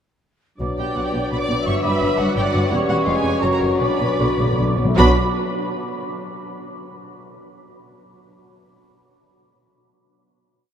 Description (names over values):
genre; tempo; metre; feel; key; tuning
classical, dramatic, fast romantic movement for symphony orchestra; 153-172 BPM; 3/4; rubato; B minor; A4 = 437 Hz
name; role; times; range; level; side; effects
large flute ensemble; second line; 0.6-5.2 s; C#6 to D6; -28 LUFS; right 1 dB; none
mellow clarinet; second line; 0.6-5.1 s; F#4 to B4; -28 LUFS; right 2 dB; none
mellow bassoon; accompaniment; 0.6-5.1 s; C#3 to A3; -27 LUFS; left 3 dB; none
warm symphonic viola section; accompaniment; 0.6-5.2 s; D4 to E5; -28 LUFS; right 2 dB; none
dark French horn section; sustained chords; 0.6-5.1 s; F#3 to D4; -27 LUFS; left 1 dB; none
rich symphonic double bass section; bass; 0.6-5.2 s; E1 to B1; -24 LUFS; equal; none
warm symphonic cello section; bass; 0.6-5.2 s; E2 to B2; -26 LUFS; equal; none
warm symphonic violin section; melody; 0.8-5.2 s; E#5 to D6; -28 LUFS; right 1 dB; none
warm symphonic violin section; second line; 0.8-5.2 s; E#4 to D5; -29 LUFS; left 2 dB; none
timpani; percussion; 3.8-5.1 s; B2; -25 LUFS; left 2 dB; none
room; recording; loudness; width
wet cathedral reverb, RT60 6.2 s; in a vast, echoing space; -17 LUFS; side -8 dB against mid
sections
0.6-5.0 A section; 5.0-6.1 final chord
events
slowing down 2.2-5.0; timpani fill 3.8-5.0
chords
0.6 Bm; 1.7 Gmaj7; 2.7 C#m7b5; 3.1 C#7; 3.4 F#; 3.8 Bm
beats
| 0.60 0.96 1.32 | 1.67 2.02 2.37 | 2.72 3.07 3.43 | 3.81 4.19 4.58 | 4.97